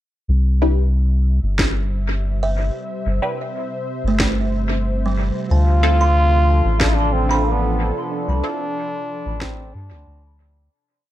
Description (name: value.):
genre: ambient dub.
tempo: 92 BPM.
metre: 4/4.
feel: straight.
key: D dorian.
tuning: A4 = 435 Hz.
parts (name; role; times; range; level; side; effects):
warm analog pad; sustained chords; 0.3-10.7 s; C3 to E5; -28 LUFS; equal; chorus.
soft dub sub bass; bass; 0.3-10.7 s; G1 to G2; -18 LUFS; equal; none.
filtered dub chord stab; stabs; 0.6-8.6 s; C4 to B4; -26 LUFS; left 2 dB; phaser, analog chorus, dub echo.
electronic kick drum; drums; 1.6-9.5 s; none; -24 LUFS; equal; none.
electronic snare drum; drums; 1.6-9.5 s; none; -25 LUFS; equal; dub echo.
buzzing kalimba; arpeggios; 2.4-9.1 s; G3 to C6; -26 LUFS; right 4 dB; vintage 12-bit sampler grit, dub echo.
clear trombone; melody; 5.5-10.4 s; B3 to F4; -22 LUFS; equal; dub echo.
room: digital ambience.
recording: echo-heavy mix.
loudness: -17 LUFS.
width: side -13 dB against mid.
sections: 0.3-10.7 groove.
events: fade-in on analog synth pad 0.3-10.7; fade-out 7.2-10.7.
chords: 0.3 C; 5.5 Dm7.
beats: | 0.28 0.94 1.59 2.24 | 2.89 3.55 4.20 4.85 | 5.50 6.16 6.81 7.46 | 8.11 8.76 9.42 10.07.